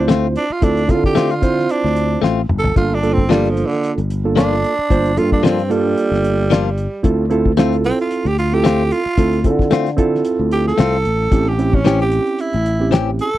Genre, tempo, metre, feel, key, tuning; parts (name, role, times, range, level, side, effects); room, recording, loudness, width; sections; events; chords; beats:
straight-eighth soul blues; 112 BPM; 4/4; swing 56% on 16ths; D minor; A4 = 440 Hz
growling tenor saxophone; second line; 0.0-13.4 s; D3 to A4; -20 LUFS; right 3 dB
mellow reed electric piano; accompaniment; 0.0-13.3 s; Bb3 to C5; -18 LUFS; right 4 dB
sustaining fretless electric bass; bass; 0.0-13.4 s; G1 to D3; -19 LUFS; left 1 dB; wide subtle chorus
direct-recorded clean electric guitar; stabs; 0.1-13.1 s; E3 to G4; -18 LUFS; left 8 dB
cloth-damped thuddy drum kit; drums; 0.1-13.3 s; hi-hat, kick drum, snare drum, toms; -16 LUFS; left 1 dB
little or no reverb; dry, close 1970s-style studio recording; -14 LUFS; side -14 dB against mid
0.0-13.4 A section
tenor saxophone solo 0.0-13.4; drum fill 2.2-2.8
0.0 Dm7; 2.8 Gm7; 7.0 Dm7; 11.3 A7#9
0.09 | 0.63 1.16 1.70 2.23 | 2.77 3.30 3.84 4.37 | 4.91 5.44 5.98 6.51 | 7.04 7.58 8.11 8.65 | 9.18 9.72 10.25 10.79 | 11.32 11.86 12.39 12.93